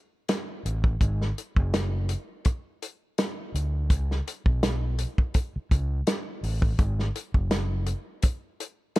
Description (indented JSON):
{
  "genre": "lush 1970s-style soul",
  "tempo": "83 BPM",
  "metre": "4/4",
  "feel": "swing 54% on 16ths",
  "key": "unclear",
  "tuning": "A4 = 436 Hz",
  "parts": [
    { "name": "warm soul drum kit", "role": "drums", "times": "0.3-9.0 s", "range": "hi-hat, kick drum, snare drum", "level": "-25 LUFS", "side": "equal", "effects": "none" },
    { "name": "overdriven fingered electric bass", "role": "bass", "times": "0.7-7.9 s", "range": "F#1 to D2", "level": "-27 LUFS", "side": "equal", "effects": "none" }
  ],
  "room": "little or no reverb",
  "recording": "dark, warm production",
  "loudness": "-25 LUFS",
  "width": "side -18 dB against mid",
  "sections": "0.0-9.0 A section",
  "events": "none",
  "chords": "none"
}